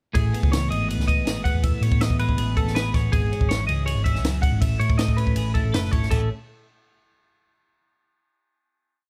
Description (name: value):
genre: math rock and midwest emo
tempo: 161 BPM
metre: 4/4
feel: straight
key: A lydian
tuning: A4 = 439 Hz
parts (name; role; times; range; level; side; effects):
- twelve-string electric guitar; accompaniment; 0.1-6.3 s; F#2 to A4; -31 LUFS; equal; none
- twelve-string electric guitar; arpeggios; 0.1-6.3 s; G#4 to F#5; -31 LUFS; equal; analog chorus, plate reverb
- hollow-body short-scale picked electric bass; bass; 0.1-6.3 s; F#1 to A2; -26 LUFS; equal; none
- compact cocktail drum kit; drums; 0.1-6.2 s; crash cymbal, kick drum, ride cymbal, snare drum; -26 LUFS; equal; none
room: light reverb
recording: none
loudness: -22 LUFS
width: mono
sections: 0.2-6.1 A section; 6.1-7.6 final chord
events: none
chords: 0.2 Amaj9#11; 3.1 E69/G#; 4.6 Amaj9; 6.1 A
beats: | 0.15 0.52 0.90 1.27 | 1.64 2.01 2.38 2.75 | 3.12 3.50 3.87 4.24 | 4.61 4.99 5.36 5.74 | 6.11